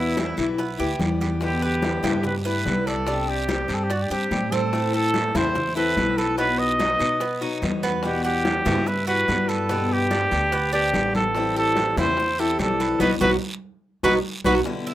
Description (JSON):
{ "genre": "latin, Cuban son and guajira", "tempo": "145 BPM", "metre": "4/4", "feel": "straight", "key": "E minor", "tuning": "A4 = 440 Hz", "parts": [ { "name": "breathy trumpet", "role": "melody", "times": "0.0-14.5 s", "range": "E4 to D#5", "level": "-24 LUFS", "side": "right 1 dB", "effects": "none" }, { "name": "picked steel-string acoustic guitar", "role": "accompaniment", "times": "0.0-14.9 s", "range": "B2 to G4", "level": "-26 LUFS", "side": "left 4 dB", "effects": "none" }, { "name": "Cuban tres", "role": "arpeggios", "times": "0.0-14.9 s", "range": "B3 to F#5", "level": "-29 LUFS", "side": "right 4 dB", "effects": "none" }, { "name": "upright bass", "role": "bass", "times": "0.0-14.6 s", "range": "A1 to B2", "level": "-28 LUFS", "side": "equal", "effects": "none" }, { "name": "bongos", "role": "percussion", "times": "0.2-14.9 s", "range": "none", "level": "-34 LUFS", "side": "left 4 dB", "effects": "none" }, { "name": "congas", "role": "percussion", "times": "0.2-14.9 s", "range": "none", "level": "-29 LUFS", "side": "left 1 dB", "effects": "none" }, { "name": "guiro", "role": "percussion", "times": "0.2-14.9 s", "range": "none", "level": "-36 LUFS", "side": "right 3 dB", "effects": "none" } ], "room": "light reverb", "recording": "rough home demo mix", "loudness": "-20 LUFS", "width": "side -14 dB against mid", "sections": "0.0-1.4 A section; 1.4-14.7 B section", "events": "band accent 13.0-14.7; drum fill 14.0-14.7", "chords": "0.0 Em; 1.4 Em7; 3.1 Csus2; 4.7 Am; 6.4 B; 8.0 Emadd9; 9.7 G; 11.3 Am7; 13.0 B" }